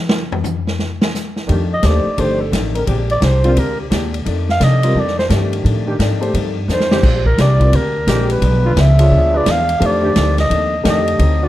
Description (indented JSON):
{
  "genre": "jazz, big band swing",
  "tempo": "173 BPM",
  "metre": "4/4",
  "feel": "swing 64% on 8ths",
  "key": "F mixolydian",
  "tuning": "A4 = 440 Hz",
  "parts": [
    { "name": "swinging big-band drum kit", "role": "drums", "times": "0.1-11.3 s", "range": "crash cymbal, hi-hat, kick drum, ride cymbal, snare drum, toms", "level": "-20 LUFS", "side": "equal", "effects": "none" },
    { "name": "archtop guitar, miked and amplified", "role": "accompaniment", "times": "1.5-11.4 s", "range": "F2 to G4", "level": "-24 LUFS", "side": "left 4 dB", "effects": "none" },
    { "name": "warm trombone section", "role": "sustained chords", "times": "1.5-11.5 s", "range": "D3 to Bb4", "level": "-24 LUFS", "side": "left 1 dB", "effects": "none" },
    { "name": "upright bass", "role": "bass", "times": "1.5-11.5 s", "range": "G1 to C3", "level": "-15 LUFS", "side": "equal", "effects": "none" },
    { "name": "growling clarinet", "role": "melody", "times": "1.7-11.5 s", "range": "G4 to F5", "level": "-18 LUFS", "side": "right 1 dB", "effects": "none" },
    { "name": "warm concert grand piano", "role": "accompaniment", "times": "1.8-11.2 s", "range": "D3 to Eb5", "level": "-21 LUFS", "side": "equal", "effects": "none" }
  ],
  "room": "light reverb",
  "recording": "dark, warm production",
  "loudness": "-13 LUFS",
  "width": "side -14 dB against mid",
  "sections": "0.0-1.5 A section; 1.5-11.5 A section",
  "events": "drum solo 0.0-1.5; clarinet solo 1.5-11.5; drum fill 6.7-7.0",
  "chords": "0.0 N.C.; 1.5 F13; 2.9 Bb13; 4.3 F13; 7.0 Bb13; 8.4 Bdim7; 9.8 F13"
}